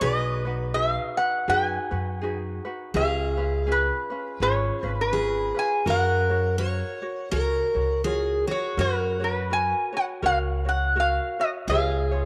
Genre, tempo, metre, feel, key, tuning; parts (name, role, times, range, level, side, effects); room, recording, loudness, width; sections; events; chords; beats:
Hawaiian; 82 BPM; 4/4; swing 59% on 8ths; F# major; A4 = 437 Hz
lap resonator guitar; melody; 0.0-12.3 s; A#4 to G#5; -28 LUFS; equal
picked steel-string acoustic guitar; second line; 0.0-12.3 s; F#4 to C#5; -32 LUFS; equal
ukulele; accompaniment; 0.0-12.3 s; C#4 to C#5; -34 LUFS; equal
upright bass; bass; 0.0-12.3 s; G#1 to F#2; -30 LUFS; equal
wet spring reverb, RT60 2.5 s; -25 LUFS; mono
0.0-8.8 A section; 8.8-12.3 B section
0.0 B6; 2.9 C#7; 5.9 F#maj7; 8.8 F#; 11.7 C#7
| 0.01 0.75 1.48 2.21 | 2.94 3.67 4.40 5.13 | 5.86 6.59 7.32 8.05 | 8.78 9.51 10.23 10.96 | 11.69